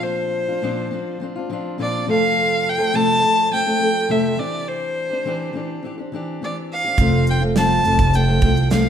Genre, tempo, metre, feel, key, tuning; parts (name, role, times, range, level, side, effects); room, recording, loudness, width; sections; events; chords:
acoustic pop; 104 BPM; 4/4; straight; F major; A4 = 441 Hz
rich violin; melody; 0.0-8.9 s; C5 to A5; -20 LUFS; equal
fingerpicked steel-string acoustic guitar; accompaniment; 0.0-8.9 s; F2 to A4; -22 LUFS; left 1 dB
upright bass; bass; 7.0-8.9 s; F1 to C2; -18 LUFS; right 1 dB
modern studio drum kit; drums; 7.0-8.8 s; kick drum, shaker, snare drum; -20 LUFS; right 2 dB
light reverb; -17 LUFS; side -8 dB against mid
0.0-8.9 A section
0.0 Bbadd9; 2.1 F; 4.4 Cadd9/E; 7.0 F